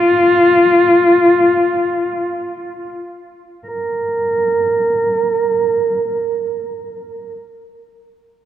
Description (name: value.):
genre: R&B.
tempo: free time.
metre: none.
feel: none.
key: unclear.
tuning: A4 = 440 Hz.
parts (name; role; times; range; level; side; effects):
dark cello; melody; 0.0-7.3 s; F4 to Bb4; -13 LUFS; equal; low-pass filter, tape echo.
room: moderate lush hall reverb, RT60 2.9 s.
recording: none.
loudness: -12 LUFS.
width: side -11 dB against mid.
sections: 0.0-3.7 A section; 3.7-6.6 B section.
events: filter sweep on cello 0.0-3.7.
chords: none.